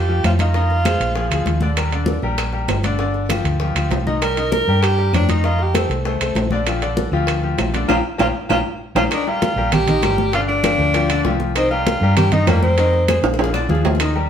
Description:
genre	latin, salsa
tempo	196 BPM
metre	4/4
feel	straight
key	Bb major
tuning	A4 = 436 Hz
part	bright tenor saxophone	melody	0.0-1.6, 4.2-13.2 s	Bb3 to Bb4	-20 LUFS	right 1 dB	none
part	bright grand piano	accompaniment	0.0-14.3 s	D3 to Eb5	-23 LUFS	left 3 dB	none
part	hollow-body short-scale fingered electric bass	bass	0.0-14.3 s	G1 to G2	-20 LUFS	equal	none
part	congas	percussion	0.1-14.3 s	none	-25 LUFS	left 1 dB	none
part	bongos	percussion	0.2-14.3 s	none	-28 LUFS	left 4 dB	none
part	claves	percussion	0.2-14.2 s	none	-32 LUFS	right 6 dB	none
part	timbales	percussion	0.2-14.2 s	none	-24 LUFS	right 4 dB	none
room	wet studio reverb, RT60 0.9 s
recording	band playing live in one room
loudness	-16 LUFS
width	side -8 dB against mid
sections	0.0-9.1 A section; 9.1-14.3 B section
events	drum fill 7.9-9.1, 13.2-14.0; band accent 7.9-9.1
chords	0.0 Ebadd9/F; 0.5 Fm7; 1.2 Bb7; 1.8 Ebmaj7; 3.0 G5; 4.2 Cm7; 5.4 F9; 6.7 Bb6; 9.1 Ebadd9; 10.3 G5; 11.6 Cm7; 12.8 Fm7; 13.4 Bb7

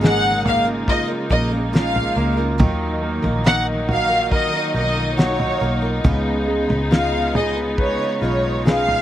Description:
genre	pop ballad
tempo	70 BPM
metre	4/4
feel	straight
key	Eb minor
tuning	A4 = 440 Hz
part	bright grand piano	accompaniment	0.0-9.0 s	Db3 to Cb5	-24 LUFS	right 1 dB	none
part	rich studio string section	sustained chords	0.0-9.0 s	Db3 to Eb4	-25 LUFS	left 1 dB	none
part	picked steel-string acoustic guitar	arpeggios	0.0-9.0 s	Bb2 to Cb5	-29 LUFS	right 1 dB	slapback echo
part	vintage muted fingered electric bass	bass	0.0-9.0 s	Ab1 to Eb2	-25 LUFS	equal	none
part	damped 70s drum kit	drums	0.0-9.0 s	kick drum, snare drum, toms	-18 LUFS	equal	none
part	dark studio violin section	melody	0.1-9.0 s	Db5 to Gb5	-21 LUFS	equal	none
room	little or no reverb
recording	recorded outdoors, with no room sound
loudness	-17 LUFS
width	side -12 dB against mid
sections	0.0-9.0 A section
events	none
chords	0.0 Bbm7; 2.6 Ebmadd9; 6.0 Db7

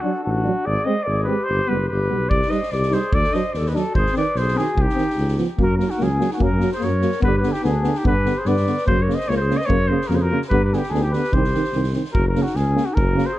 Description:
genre	balkan folk, Balkan brass band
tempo	146 BPM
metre	2/4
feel	straight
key	unclear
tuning	A4 = 440 Hz
part	mellow trumpet	melody	0.0-13.4 s	F#4 to Eb5	-24 LUFS	equal	tape echo
part	mellow clarinet	second line	0.0-13.4 s	C#4 to C5	-27 LUFS	left 4 dB	none
part	dark euphonium	accompaniment	0.0-13.2 s	C#3 to Ab3	-25 LUFS	right 5 dB	none
part	mellow trombone	accompaniment	0.0-13.3 s	A#3 to Eb4	-27 LUFS	left 5 dB	none
part	mellow tuba	bass	0.3-13.2 s	F#1 to G2	-22 LUFS	equal	none
part	street-band drum kit	percussion	2.3-13.2 s	kick drum, snare drum	-25 LUFS	equal	vintage 12-bit sampler grit
room	light reverb, small room ambience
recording	dark, warm production, nothing above 11.0 kHz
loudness	-18 LUFS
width	side -15 dB against mid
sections	0.0-5.6 A section; 5.6-12.2 B section; 12.2-13.4 B section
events	none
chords	0.0 D; 0.7 Ab; 1.5 G; 2.3 Cm; 3.1 D; 3.9 Ab; 4.8 Cm; 5.2 Db7; 5.6 F#; 7.2 G; 8.9 F#; 10.5 G; 11.3 Cm; 12.2 F#

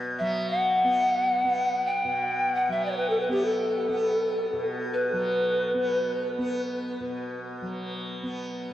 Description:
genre	world meditative, free-time meditation music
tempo	free time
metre	none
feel	none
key	unclear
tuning	A4 = 441 Hz
part	tanpura	drone	0.0-8.7 s	B2 to B3	-32 LUFS	equal	none
part	mellow polished pan flute	melody	0.2-6.7 s	G4 to G5	-25 LUFS	equal	shimmer reverb
room	wet huge ambient reverb, RT60 7.8 s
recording	worn, warbling old tape, cassette tape, warbly pitch drift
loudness	-24 LUFS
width	side -12 dB against mid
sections	0.0-8.7 A section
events	none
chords	none

